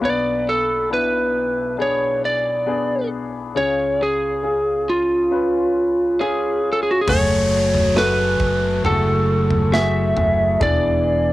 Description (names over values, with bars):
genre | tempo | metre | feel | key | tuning
pop ballad | 68 BPM | 4/4 | straight | F# minor | A4 = 440 Hz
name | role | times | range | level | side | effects
warm grand piano | accompaniment | 0.0-11.3 s | B1 to B4 | -24 LUFS | left 4 dB | cassette tape
lightly driven lead guitar | melody | 0.1-11.3 s | E#4 to E5 | -19 LUFS | right 1 dB | cassette tape
pipe organ, stopped flute | sustained chords | 7.1-11.3 s | C#3 to F#4 | -24 LUFS | left 1 dB | cassette tape
fingered electric bass | bass | 7.1-11.3 s | E1 to F#1 | -22 LUFS | right 1 dB | none
modern studio drum kit | drums | 7.1-10.8 s | crash cymbal, kick drum, snare drum, toms | -24 LUFS | right 1 dB | none
downlifter | sound effects | 7.1-11.3 s | none | -31 LUFS | equal | none
room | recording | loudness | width
wet booth ambience, RT60 0.2 s | home recording on cassette | -16 LUFS | side -16 dB against mid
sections
0.0-7.1 A section; 7.1-11.3 B section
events
none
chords
0.0 G#dim/B; 3.6 C#; 7.1 F#madd9; 10.6 E7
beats
| 0.02 0.90 1.79 2.67 | 3.55 4.43 5.32 6.20 | 7.08 7.96 8.85 9.73 | 10.61